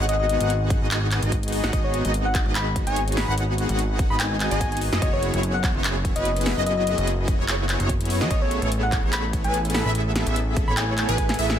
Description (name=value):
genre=future bass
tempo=146 BPM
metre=4/4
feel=swing 54% on 16ths, half-time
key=unclear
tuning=A4 = 439 Hz
part: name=soft struck synth lead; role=melody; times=0.0-11.4 s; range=C#5 to B5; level=-28 LUFS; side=left 2 dB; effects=chorus, sidechain pumping, ping-pong delay
part: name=wide unison pluck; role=arpeggios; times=0.0-11.6 s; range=B4 to F#5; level=-33 LUFS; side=right 1 dB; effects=phaser, sidechain pumping, ping-pong delay
part: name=soft supersaw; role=riff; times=0.0-11.6 s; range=B3 to F#5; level=-28 LUFS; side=equal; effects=sidechain pumping
part: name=fat analog bass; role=bass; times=0.0-11.6 s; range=F#1 to F#2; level=-25 LUFS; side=equal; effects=sidechain pumping
part: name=big-room dance drum kit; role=drums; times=0.1-11.6 s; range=handclaps, hi-hat, snare drum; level=-28 LUFS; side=equal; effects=studio reverb
part: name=electronic kick drum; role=drums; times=0.7-11.3 s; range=none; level=-24 LUFS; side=equal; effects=studio reverb
room=light reverb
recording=none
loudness=-20 LUFS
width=side -10 dB against mid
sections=0.0-11.6 A section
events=none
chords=0.0 G#m7; 4.8 F#9sus4; 8.3 Amaj9